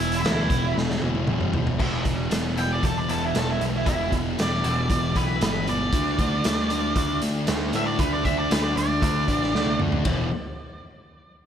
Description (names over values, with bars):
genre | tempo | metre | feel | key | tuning
quiet-loud alternative rock | 116 BPM | 4/4 | straight | E minor | A4 = 442 Hz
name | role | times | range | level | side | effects
octave-fuzz lead guitar | melody | 0.0-9.8 s | E4 to G5 | -28 LUFS | right 2 dB | distortion, tape echo
thick fuzz guitar | riff | 0.0-10.3 s | E2 to D4 | -26 LUFS | equal | distortion
growling picked electric bass | bass | 0.0-10.3 s | E1 to A2 | -29 LUFS | equal | overdrive
raw garage drum kit | drums | 0.1-10.2 s | crash cymbal, hi-hat, kick drum, ride cymbal, snare drum, toms | -26 LUFS | equal | none
twangy electric guitar | arpeggios | 1.8-5.7 s | E3 to E4 | -37 LUFS | left 8 dB | ensemble chorus
room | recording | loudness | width
light reverb, small room ambience | none | -21 LUFS | side -9 dB against mid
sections
0.0-1.8 A section; 1.8-10.1 B section; 10.1-11.5 C section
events
drum fill 0.8-1.8, 9.5-10.1; lead electric guitar solo 1.8-10.1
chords
0.0 E5; 1.8 Em; 5.9 D5; 10.1 E5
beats
0.24 0.76 1.28 | 1.79 2.31 2.83 3.34 | 3.86 4.38 4.89 5.41 | 5.93 6.44 6.96 7.47 | 7.99 8.51 9.02 9.54 | 10.05